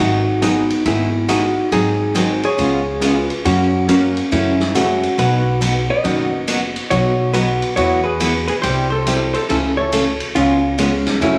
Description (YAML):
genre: country, western swing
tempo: 139 BPM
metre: 4/4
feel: swing 65% on 8ths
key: E major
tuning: A4 = 440 Hz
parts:
  - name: vintage hollow-body jazz guitar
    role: melody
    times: 0.0-11.4 s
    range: G#3 to D#5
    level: -20 LUFS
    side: equal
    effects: none
  - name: picked steel-string acoustic guitar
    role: accompaniment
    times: 0.0-11.4 s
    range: B2 to B4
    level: -23 LUFS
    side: equal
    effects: none
  - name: upright bass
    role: bass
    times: 0.0-11.4 s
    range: F#1 to F#2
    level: -25 LUFS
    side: equal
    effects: none
  - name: bright upright piano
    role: accompaniment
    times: 0.4-11.4 s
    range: D#3 to B4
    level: -27 LUFS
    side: equal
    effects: none
  - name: swinging big-band drum kit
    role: drums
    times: 0.4-11.3 s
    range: hi-hat, ride cymbal, snare drum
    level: -27 LUFS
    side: equal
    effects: none
room: wet large studio reverb, RT60 1.3 s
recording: vinyl crackle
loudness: -17 LUFS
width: mono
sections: 0.0-11.4 A section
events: none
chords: 0.0 G#m7; 0.9 Emaj7/G#; 1.7 G#7; 2.6 C#7; 3.5 F#; 4.3 F#m7; 5.2 B; 7.8 Esus2; 8.6 C; 9.5 A/C#; 10.4 C#7